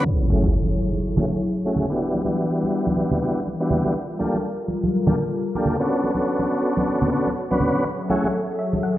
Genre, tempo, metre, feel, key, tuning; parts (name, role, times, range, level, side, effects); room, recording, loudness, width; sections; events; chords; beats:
deep house; 123 BPM; 4/4; swing 58% on 16ths; F# phrygian; A4 = 440 Hz
warm analog pad; sustained chords; 0.0-9.0 s; E3 to F#5; -26 LUFS; left 1 dB; chorus
tonewheel organ; stabs; 0.0-8.3 s; A3 to B4; -23 LUFS; equal; chorus vibrato, low-pass filter, tape echo
congas; percussion; 0.1-8.8 s; -25 LUFS; right 1 dB
impact; sound effects; 0.1-2.0 s; -23 LUFS; equal
soft round pluck; melody; 8.1-9.0 s; E5 to F#5; -31 LUFS; left 1 dB; lush chorus, cassette tape
wet echo chamber reverb, RT60 1.3 s, digital ambience; played on a big sound system in a bare room, stone room reverb, low-pass filter; -20 LUFS; side -14 dB against mid
0.1-9.0 A section
impact 0.1-2.0; filter sweep on tonewheel organ 0.1-9.0
0.1 F#m9; 2.0 Em9; 4.0 Gm9; 5.9 Bm9; 7.9 F#m9
| 0.05 0.54 1.03 1.51 | 2.00 2.49 2.98 3.47 | 3.95 4.44 4.93 5.42 | 5.91 6.39 6.88 7.37 | 7.86 8.34 8.83